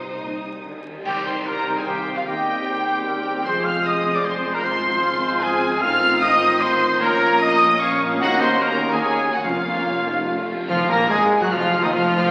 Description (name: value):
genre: classical, dramatic, fast romantic movement for symphony orchestra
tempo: 149 BPM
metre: 3/4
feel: uneven beats, rubato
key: C minor, Bb minor from 5.8 s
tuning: A4 = 440 Hz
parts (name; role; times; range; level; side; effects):
- clear symphonic violin section; melody; 0.0-12.3 s; F5 to Bb6; -30 LUFS; equal; none
- clear studio violin section; second line; 0.0-12.3 s; Eb4 to F6; -32 LUFS; equal; none
- clear studio viola section; accompaniment; 0.0-12.3 s; Eb3 to C5; -30 LUFS; equal; none
- clear studio double bass section; bass; 0.0-12.3 s; F1 to Eb2; -36 LUFS; equal; none
- rich symphonic cello section; bass; 0.0-12.3 s; C2 to Eb3; -38 LUFS; equal; none
- large flute ensemble; second line; 1.1-12.3 s; Eb5 to F6; -27 LUFS; equal; none
- warm oboe; second line; 1.1-12.3 s; F4 to Bb5; -31 LUFS; equal; none
- bright trombone section; sustained chords; 1.1-12.3 s; Eb3 to C4; -32 LUFS; equal; none
- dark French horn section; sustained chords; 1.1-12.3 s; Eb3 to G4; -32 LUFS; equal; none
- clear trumpet section; stabs; 1.1-12.3 s; Eb4 to F5; -26 LUFS; equal; none
- clash cymbals, concert bass drum, cymbal swell and tam-tam; percussion; 1.1-1.8, 8.2-12.3 s; none; -38 LUFS; equal; none
- clear clarinet; second line; 1.5-12.3 s; Eb4 to G5; -32 LUFS; equal; none
- clear bassoon; accompaniment; 10.7-12.3 s; Eb3 to Bb3; -29 LUFS; equal; none
room: wet scoring stage reverb, RT60 1.8 s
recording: very old 78 rpm record, vinyl crackle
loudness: -20 LUFS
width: mono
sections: 0.0-1.1 A section; 1.1-10.7 B section; 10.7-12.3 C section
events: band accent 1.1-1.5, 10.7-11.1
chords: 0.0 Cm; 2.3 Cm/Eb; 3.5 Fm; 4.6 Fm/Ab; 5.8 F7/A; 7.0 Bbm; 8.2 Ebm7; 9.4 Bbm/F; 10.3 F; 10.7 Bb5/F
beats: 0.17 0.62 | 1.06 1.47 1.87 | 2.27 2.67 3.07 | 3.46 3.85 4.25 | 4.64 5.03 5.42 | 5.82 6.22 6.62 | 7.01 7.41 7.82 | 8.21 8.61 9.02 | 9.44 9.86 10.28 | 10.69 11.10 11.52 | 11.93